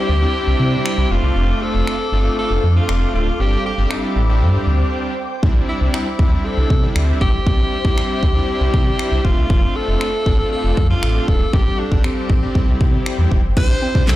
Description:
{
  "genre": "dance-pop",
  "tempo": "118 BPM",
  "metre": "4/4",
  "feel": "straight",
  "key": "C major",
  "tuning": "A4 = 437 Hz",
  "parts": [
    { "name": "bright alto saxophone", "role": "melody", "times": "0.0-14.2 s", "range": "C4 to C5", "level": "-23 LUFS", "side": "left 1 dB", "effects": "dub echo" },
    { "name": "big bright polysynth", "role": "accompaniment", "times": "0.0-14.2 s", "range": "G3 to G4", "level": "-24 LUFS", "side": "equal", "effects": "sidechain pumping" },
    { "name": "ethereal airy pad", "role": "sustained chords", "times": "0.0-14.2 s", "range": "A4 to E6", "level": "-29 LUFS", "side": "left 1 dB", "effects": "ensemble chorus, built-in reverb, sidechain pumping" },
    { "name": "downlifter", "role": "sound effects", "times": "0.0-1.4 s", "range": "none", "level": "barely audible", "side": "none", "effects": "none" },
    { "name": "sub bass with octave", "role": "bass", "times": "0.1-14.2 s", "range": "D1 to C3", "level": "-17 LUFS", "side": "equal", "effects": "sidechain pumping" },
    { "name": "pop drum kit", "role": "drums", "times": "0.9-14.2 s", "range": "crash cymbal, finger snaps, handclaps, kick drum, snare drum", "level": "-17 LUFS", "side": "equal", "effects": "none" },
    { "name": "mallet-like synth pluck", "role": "arpeggios", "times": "13.6-14.0 s", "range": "G3 to E4", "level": "-27 LUFS", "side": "right 2 dB", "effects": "chorus, sidechain pumping" }
  ],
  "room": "light reverb",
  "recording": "played on a big sound system in a bare room, large studio reverb",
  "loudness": "-15 LUFS",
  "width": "side -15 dB against mid",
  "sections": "0.0-13.6 A section",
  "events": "break 4.9-5.4",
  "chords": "0.0 Cadd9; 1.1 F6; 3.4 Gsus4; 5.4 Cadd9; 9.2 F6; 11.5 Gsus4; 12.6 C; 13.6 Cadd9"
}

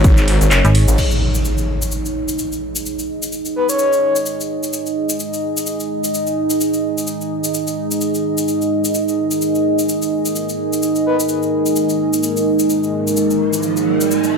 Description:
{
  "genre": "bass house",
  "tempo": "128 BPM",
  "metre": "4/4",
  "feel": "swing 57% on 16ths",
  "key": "unclear",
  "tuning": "A4 = 440 Hz",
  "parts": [
    { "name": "phased detuned saw bass", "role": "bass", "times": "0.0-1.0 s", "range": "F#1 to G#1", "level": "-14 LUFS", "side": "equal", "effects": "phaser, tube saturation, sidechain pumping" },
    { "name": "house drum kit", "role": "drums", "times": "0.0-1.1 s", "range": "crash cymbal, handclaps, hi-hat, ride cymbal", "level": "-21 LUFS", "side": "equal", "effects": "small room ambience" },
    { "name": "cabasa", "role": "percussion", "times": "0.0-14.3 s", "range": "none", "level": "-25 LUFS", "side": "left 3 dB", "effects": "none" },
    { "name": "deep dark ambient pad", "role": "texture", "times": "0.0-14.4 s", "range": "D#4 to D#5", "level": "-19 LUFS", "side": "right 2 dB", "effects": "chorus, built-in reverb, sidechain pumping" },
    { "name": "metallic FM bass", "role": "bass", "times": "0.6-0.9 s", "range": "G#1", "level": "-11 LUFS", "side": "equal", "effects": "overdrive, sidechain pumping" },
    { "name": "dark analog pad", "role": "sustained chords", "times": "3.8-14.4 s", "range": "G#3 to A#4", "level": "-22 LUFS", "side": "equal", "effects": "chorus, phaser, vintage 12-bit sampler grit, sidechain pumping" },
    { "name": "impact and riser", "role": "sound effects", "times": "1.0-2.9, 12.8-14.4 s", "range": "none", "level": "-22 LUFS", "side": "equal", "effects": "none" },
    { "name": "breathy flute-like synth lead", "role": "melody", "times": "3.6-4.2, 11.1-11.2 s", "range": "B4 to C#5", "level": "-18 LUFS", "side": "left 2 dB", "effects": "wide subtle chorus, tape echo" }
  ],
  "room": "moderate lush hall reverb, RT60 2.2 s",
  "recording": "none",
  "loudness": "-15 LUFS",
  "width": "side -5 dB against mid",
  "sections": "1.0-14.4 A section",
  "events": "impact 1.0-2.9; filter sweep on analog synth pad 1.0-14.4; riser 12.8-14.4",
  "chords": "0.0 G#5"
}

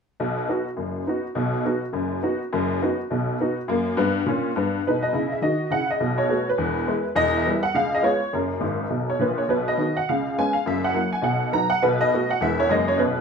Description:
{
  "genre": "jazz, stride piano",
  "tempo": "206 BPM",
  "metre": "4/4",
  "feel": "swing 59% on 8ths",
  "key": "B major",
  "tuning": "A4 = 440 Hz",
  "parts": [
    { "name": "honky-tonk upright piano", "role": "solo", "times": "0.2-13.2 s", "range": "E1 to A#5", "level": "-21 LUFS", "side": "equal", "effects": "none" }
  ],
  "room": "wet studio reverb, RT60 0.6 s",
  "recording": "band playing live in one room",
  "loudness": "-21 LUFS",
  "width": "side -6 dB against mid",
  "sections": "0.2-4.8 A section; 4.8-13.2 B section",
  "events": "honky-tonk piano fill 8.6-9.5",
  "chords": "0.2 B/F#; 3.7 F#; 4.8 B; 6.0 B5; 6.6 E; 7.2 Em; 7.7 C#7; 8.3 F#; 9.5 B; 10.1 C#7; 10.7 F#7; 11.2 B; 11.8 B7; 12.4 E; 12.7 F#9"
}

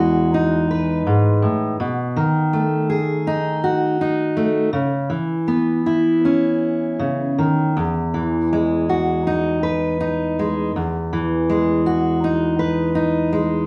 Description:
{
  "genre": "folk, solo fingerstyle acoustic guitar",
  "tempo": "81 BPM",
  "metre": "4/4",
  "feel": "rubato",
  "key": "E major",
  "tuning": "A4 = 440 Hz",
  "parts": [
    { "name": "fingerpicked steel-string acoustic guitar", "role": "solo", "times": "0.0-13.7 s", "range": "E2 to B4", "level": "-20 LUFS", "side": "equal", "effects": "none" }
  ],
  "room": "moderate large studio reverb, RT60 0.8 s",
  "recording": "band playing live in one room, small room ambience",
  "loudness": "-20 LUFS",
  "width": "mono",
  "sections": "0.0-13.7 A section",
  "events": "none",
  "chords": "0.0 Emaj7; 1.8 B7; 4.7 C#m7; 7.8 Emaj7"
}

